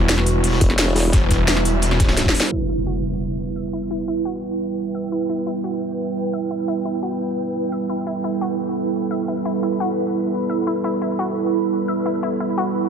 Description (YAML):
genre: dark technical drum and bass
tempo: 173 BPM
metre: 4/4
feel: straight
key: E minor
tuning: A4 = 440 Hz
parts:
  - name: dark analog pad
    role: sustained chords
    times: 0.0-12.9 s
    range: G3 to B4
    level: -24 LUFS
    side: right 2 dB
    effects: chorus, sidechain pumping
  - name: wide detuned saw bass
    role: bass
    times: 0.0-2.3 s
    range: E1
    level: -19 LUFS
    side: equal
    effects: chorus, tube saturation
  - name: ethereal airy pad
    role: texture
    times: 0.0-12.9 s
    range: E4 to B5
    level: -25 LUFS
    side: right 3 dB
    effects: ensemble chorus, built-in reverb, phaser, sidechain pumping
  - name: crunchy breakbeat drum kit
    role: drums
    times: 0.1-2.5 s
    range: hi-hat, snare drum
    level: -29 LUFS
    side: equal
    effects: high-pass filter on hats, high-pass filter on snare, high-pass filter on room
  - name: drum and bass drum kit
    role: drums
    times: 0.1-2.5 s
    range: hi-hat, snare drum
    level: -21 LUFS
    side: equal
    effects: none
  - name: formant-sweep wobble bass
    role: bass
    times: 0.6-1.1 s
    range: E1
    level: -20 LUFS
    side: equal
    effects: chorus
  - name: electronic kick drum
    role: drums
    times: 0.6-2.3 s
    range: none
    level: -18 LUFS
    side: equal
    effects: none
  - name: analog pluck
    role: arpeggios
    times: 2.5-12.7 s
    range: E4 to E5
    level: -30 LUFS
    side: left 5 dB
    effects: chorus, sidechain pumping, dub echo
  - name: impact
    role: sound effects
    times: 2.5-3.9 s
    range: none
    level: -27 LUFS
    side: equal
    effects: none
room: light reverb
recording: low-pass filter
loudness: -19 LUFS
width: side -7 dB against mid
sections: 0.0-2.5 A section; 2.5-12.9 B section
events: drop 0.0-2.5; drum fill 2.2-2.5; band accent 2.4; impact 2.5-3.9; filter sweep 2.5-12.9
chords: 0.0 Em